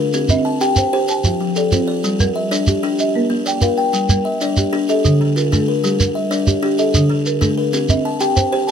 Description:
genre	southern african traditional, mbira-style interlocking cycle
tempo	126 BPM (dotted quarters)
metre	12/8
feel	straight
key	G equiheptatonic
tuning	A4 = 439 Hz
part	buzzing kalimba	arpeggios	0.0-8.7 s	D3 to A5-29c	-18 LUFS	left 3 dB	none
part	folk marimba with soft mallets	arpeggios	0.0-8.7 s	D3 to A5-29c	-20 LUFS	right 4 dB	none
part	shekere	percussion	0.1-8.7 s	none	-18 LUFS	right 2 dB	none
room	light reverb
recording	none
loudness	-14 LUFS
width	side -8 dB against mid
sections	0.0-8.7 A section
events	none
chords	0.1 C; 1.1 F; 2.0 Gm; 3.0 Bb; 3.9 Gm; 4.9 Dm; 5.8 Gm; 6.8 D5; 7.7 C

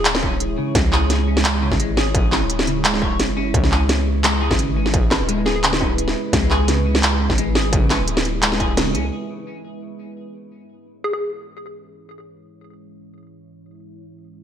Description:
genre	half-time drum and bass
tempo	172 BPM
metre	4/4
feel	swing 54% on 16ths, half-time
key	C# phrygian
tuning	A4 = 440 Hz
part	hollow square pluck	melody	0.0, 5.5-5.6, 11.0-11.2 s	G#4	-28 LUFS	left 1 dB	chorus, cassette tape, digital delay
part	deep dark ambient pad	sustained chords	0.0-14.4 s	G#3 to C#5	-27 LUFS	right 3 dB	chorus, built-in reverb, sidechain pumping
part	clean electric guitar	arpeggios	0.0-9.1 s	C#3 to C#5	-26 LUFS	left 2 dB	wide subtle chorus, digital delay
part	long sustained 808-style bass	bass	0.0-9.1 s	D1 to C#2	-22 LUFS	equal	none
part	industrial drum kit	drums	0.1-9.0 s	handclaps, hi-hat, snare drum	-20 LUFS	equal	low-pass filter on hats, low-pass filter on snare, low-pass filter on room, gated reverb
part	electronic kick drum	drums	0.2-8.7 s	none	-21 LUFS	equal	distortion
room	light reverb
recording	bright 1980s-style digital production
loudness	-16 LUFS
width	side -9 dB against mid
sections	0.0-9.1 A section; 9.1-14.4 B section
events	drop 0.0-9.1; band accent 8.8; filter sweep on ambient pad 9.1-14.4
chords	0.0 C#m

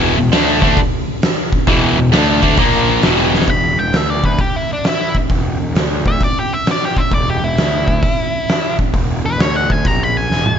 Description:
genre	blues rock power trio and southern rock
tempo	132 BPM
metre	4/4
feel	swing 67% on 8ths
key	unclear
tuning	A4 = 440 Hz
part	cranked stack guitar	riff	0.0-3.5 s	E2 to D4	-13 LUFS	left 1 dB	overdrive
part	fuzz picked electric bass	bass	0.0-10.6 s	E1 to D2	-19 LUFS	equal	overdrive
part	oversized low-tuned drum kit	drums	0.3-10.6 s	hi-hat, kick drum, snare drum, toms	-16 LUFS	equal	none
part	octave-fuzz lead guitar	melody	3.5-10.6 s	D4 to B5	-19 LUFS	equal	distortion
room	light reverb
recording	nothing above 7.7 kHz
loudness	-13 LUFS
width	side -8 dB against mid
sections	0.0-3.5 A section; 3.5-10.6 B section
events	drum fill 3.3, 10.3; lead electric guitar solo 3.5-10.6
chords	0.0 E5; 2.6 A#5; 3.0 E5; 3.5 E7(no3); 9.8 G#madd9/A#

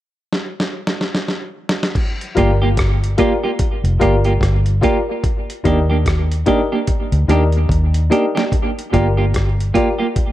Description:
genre	dub reggae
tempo	73 BPM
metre	4/4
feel	swing 60% on 16ths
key	G minor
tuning	A4 = 440 Hz
part	dusty soul sampler-style drum kit	drums	0.3-10.3 s	crash cymbal, hi-hat, kick drum, rim click, snare drum	-20 LUFS	equal	none
part	warm upright piano	stabs	2.3-9.9 s	Eb4 to D5	-21 LUFS	left 3 dB	tape echo
part	clean electric guitar	accompaniment	2.4-10.1 s	Bb3 to G4	-20 LUFS	right 4 dB	tape echo
part	vintage muted fingered electric bass	bass	2.4-9.7 s	F1 to Eb2	-15 LUFS	equal	none
room	digital ambience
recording	echo-heavy mix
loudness	-15 LUFS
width	side -14 dB against mid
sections	0.0-2.0 A section; 2.0-8.5 B section; 8.5-10.3 C section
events	drum fill 0.3-2.0, 6.9-8.5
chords	0.0 N.C.; 2.0 Gm7; 5.2 Ebmaj7; 8.5 Gm7

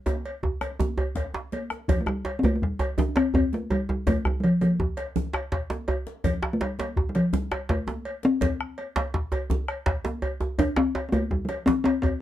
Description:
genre	west african traditional, West African drum ensemble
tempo	110 BPM (dotted quarters)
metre	12/8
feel	straight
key	unclear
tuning	A4 = 441 Hz
part	talking drum	melody	0.0-12.2 s	F3 to D4	-24 LUFS	left 1 dB	none
part	congas	percussion	0.1-11.8 s	none	-34 LUFS	right 5 dB	none
part	cowbell	percussion	0.1-12.2 s	none	-34 LUFS	equal	none
part	djembe	percussion	0.1-11.8 s	none	-33 LUFS	left 2 dB	none
part	djembe	percussion	0.1-12.2 s	none	-28 LUFS	right 2 dB	none
part	bombo	percussion	0.4-12.2 s	none	-30 LUFS	left 1 dB	none
room	little or no reverb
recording	dark, warm production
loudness	-24 LUFS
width	side -12 dB against mid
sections	0.0-1.9 A section; 1.9-12.2 B section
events	drum fill 0.0-1.9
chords	none

